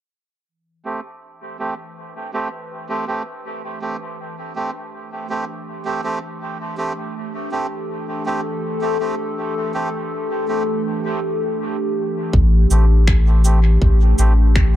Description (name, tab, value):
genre	ambient dub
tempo	81 BPM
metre	4/4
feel	straight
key	A minor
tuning	A4 = 440 Hz
part	warbly tape-like pad	sustained chords	1.6-14.8 s	E3 to B4	-25 LUFS	left 1 dB	chorus, built-in reverb, phaser
part	melodica	stabs	0.9-14.3 s	A3 to G4	-26 LUFS	right 3 dB	low-pass filter, dub echo
part	soft dub sub bass	bass	12.3-14.8 s	A1	-13 LUFS	equal	none
part	electronic kick drum	drums	12.3-14.7 s	none	-17 LUFS	equal	none
part	electronic shaker and finger snaps	drums	12.7-14.7 s	none	-26 LUFS	equal	dub echo
room	little or no reverb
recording	echo-heavy mix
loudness	-17 LUFS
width	side -13 dB against mid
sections	0.5-12.3 A section; 12.3-14.8 B section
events	fade-in on ambient pad 0.5-12.3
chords	0.5 Am7